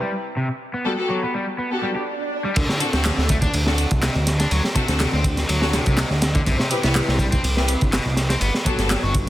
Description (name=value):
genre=breakbeat, breaks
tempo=123 BPM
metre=4/4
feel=straight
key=D mixolydian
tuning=A4 = 440 Hz
part: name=cranked stack guitar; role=riff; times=0.0-9.1 s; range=B2 to G4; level=-26 LUFS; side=left 1 dB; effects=overdrive, spring reverb, low-pass filter, dub echo
part: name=rich studio string section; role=stabs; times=0.9-8.9 s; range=B3 to B4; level=-26 LUFS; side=left 1 dB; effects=dub echo
part: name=swell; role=sound effects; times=1.8-2.6 s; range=none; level=-29 LUFS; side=right 3 dB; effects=none
part: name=fat analog bass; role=bass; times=2.6-9.3 s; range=G1 to D2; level=-22 LUFS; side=equal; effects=none
part: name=crunchy breakbeat drum kit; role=drums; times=2.6-9.3 s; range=crash cymbal, kick drum, ride cymbal, snare drum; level=-21 LUFS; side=equal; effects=none
part: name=punchy analog drum machine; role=drums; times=2.6-9.2 s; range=handclaps, hi-hat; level=-29 LUFS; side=right 1 dB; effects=overdrive
room=light reverb, studio reverb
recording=dense, heavily limited modern master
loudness=-18 LUFS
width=side -14 dB against mid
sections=0.0-2.6 A section; 2.6-9.3 B section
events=filter sweep on string section 0.0-2.6; swell 1.8-2.6; drop 2.6-9.3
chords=0.0 C5; 0.6 Gmaj9; 2.6 D7; 6.5 Cmaj7; 8.4 Gmaj9